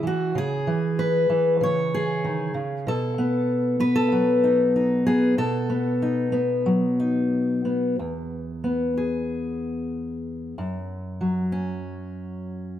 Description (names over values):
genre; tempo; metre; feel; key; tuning
folk, solo fingerstyle acoustic guitar; 95 BPM; 4/4; rubato; E major; A4 = 440 Hz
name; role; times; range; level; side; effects
fingerpicked steel-string acoustic guitar; solo; 0.0-12.8 s; E2 to C#5; -22 LUFS; left 1 dB; none
room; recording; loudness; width
light reverb; none; -21 LUFS; side -11 dB against mid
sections
0.0-8.0 A section; 8.0-12.8 B section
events
none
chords
0.0 C#m7; 2.9 B7; 8.0 E; 10.6 F#5